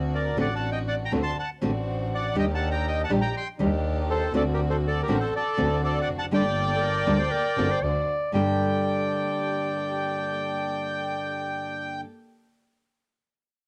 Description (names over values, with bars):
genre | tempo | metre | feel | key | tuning
tango | 121 BPM | 4/4 | rubato | G harmonic minor | A4 = 440 Hz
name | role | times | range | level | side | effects
dark chamber string section | stabs | 0.0-12.0 s | Bb3 to C5 | -37 LUFS | equal | cassette tape
clear double bass | bass | 0.0-8.5 s | F1 to Eb2 | -31 LUFS | equal | tube saturation
bandoneon | melody | 0.1-12.0 s | G4 to C6 | -31 LUFS | equal | none
nylon-string guitar | accompaniment | 0.4-12.1 s | G2 to A4 | -29 LUFS | equal | cassette tape
bright clarinet | second line | 6.8-12.0 s | A4 to D5 | -32 LUFS | equal | cassette tape
room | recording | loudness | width
moderate booth ambience, RT60 0.2 s | home recording on cassette | -26 LUFS | mono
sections
0.0-8.3 A section; 8.3-12.3 B section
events
none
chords
0.0 D7; 2.4 Ebmaj7; 4.3 D7; 6.3 Gmadd9; 7.8 D7; 8.3 Gmadd9